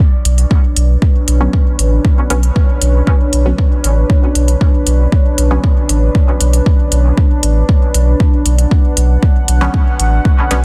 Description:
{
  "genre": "dub techno",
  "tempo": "117 BPM",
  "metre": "4/4",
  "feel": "straight",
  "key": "B minor",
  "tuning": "A4 = 441 Hz",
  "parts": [
    { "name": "deep dark ambient pad", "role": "sustained chords", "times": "0.0-10.6 s", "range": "D4 to F#5", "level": "-23 LUFS", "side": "equal", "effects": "chorus, built-in reverb, sidechain pumping" },
    { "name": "electronic kick drum", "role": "drums", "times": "0.0-10.4 s", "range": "none", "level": "-13 LUFS", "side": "equal", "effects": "studio reverb" },
    { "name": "warm sub bass", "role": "bass", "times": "0.2-10.6 s", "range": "A1 to B1", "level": "-13 LUFS", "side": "equal", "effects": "tube saturation, sidechain pumping" },
    { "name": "electronic hi-hat", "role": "drums", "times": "0.3-10.6 s", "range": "none", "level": "-20 LUFS", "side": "equal", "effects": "studio reverb" },
    { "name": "filtered dub chord stab", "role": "stabs", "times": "1.4-5.6, 9.6-10.6 s", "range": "D3 to C#4", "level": "-25 LUFS", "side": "equal", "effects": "chorus, phaser, sidechain pumping, dub echo" }
  ],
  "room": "digital ambience",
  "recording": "dense, heavily limited modern master",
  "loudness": "-12 LUFS",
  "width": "mono",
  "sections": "0.0-10.6 A section",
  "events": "none",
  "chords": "0.0 Bmadd9"
}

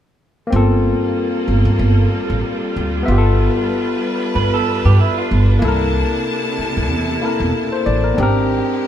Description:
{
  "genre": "R&B",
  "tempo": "94 BPM",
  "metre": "4/4",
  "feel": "swing 56% on 16ths",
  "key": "G dorian",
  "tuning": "A4 = 440 Hz",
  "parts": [
    { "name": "barky tine electric piano", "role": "accompaniment", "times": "0.5-8.9 s", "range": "Bb3 to E5", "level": "-19 LUFS", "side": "left 3 dB", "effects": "none" },
    { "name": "clear studio string section", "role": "sustained chords", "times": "0.5-8.9 s", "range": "C3 to A5", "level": "-24 LUFS", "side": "right 1 dB", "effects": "none" },
    { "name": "upright bass", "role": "bass", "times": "0.5-8.6 s", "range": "E1 to G2", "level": "-16 LUFS", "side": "right 1 dB", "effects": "none" },
    { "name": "electric guitar through a small old amp", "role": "second line", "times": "4.4-5.6 s", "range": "E4 to B4", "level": "-21 LUFS", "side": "right 8 dB", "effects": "none" }
  ],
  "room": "wet large studio reverb, RT60 1.0 s",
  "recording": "band playing live in one room",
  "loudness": "-14 LUFS",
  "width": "side -10 dB against mid",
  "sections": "0.5-8.9 A section",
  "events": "none",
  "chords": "0.5 Gm9; 3.1 G7; 5.6 C13; 8.2 Abmaj9"
}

